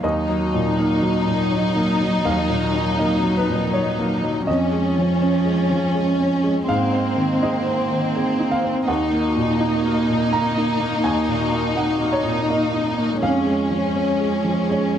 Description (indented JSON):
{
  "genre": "neoclassical piano and strings",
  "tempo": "82 BPM",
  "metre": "3/4",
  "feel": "rubato",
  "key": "Eb minor",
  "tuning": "A4 = 440 Hz",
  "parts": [
    { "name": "rich studio violin section", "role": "melody", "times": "0.0-15.0 s", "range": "C4 to Eb4", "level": "-23 LUFS", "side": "left 2 dB", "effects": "none" },
    { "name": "rich cello", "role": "second line", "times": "0.0-15.0 s", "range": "F3 to Bb3", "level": "-25 LUFS", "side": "right 3 dB", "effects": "none" },
    { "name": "warm upright piano", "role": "accompaniment", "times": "0.0-15.0 s", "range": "Eb2 to Bb5", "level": "-22 LUFS", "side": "equal", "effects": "none" },
    { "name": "marimba with medium hard mallets", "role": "arpeggios", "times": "0.0-14.8 s", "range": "Db4 to Eb5", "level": "-28 LUFS", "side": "right 5 dB", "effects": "none" }
  ],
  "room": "light reverb",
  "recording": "dark, warm production",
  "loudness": "-18 LUFS",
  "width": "side -9 dB against mid",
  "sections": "0.0-15.0 A section",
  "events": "none",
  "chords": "0.0 Ebm; 4.5 Db/F; 6.7 Abadd9; 8.9 Ebm; 13.2 Db/F",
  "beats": "| 0.03 0.77 1.51 | 2.25 2.99 3.73 | 4.47 5.21 5.95 | 6.68 7.42 8.15 | 8.88 9.61 10.33 | 11.05 11.77 12.50 | 13.23 13.96 14.71"
}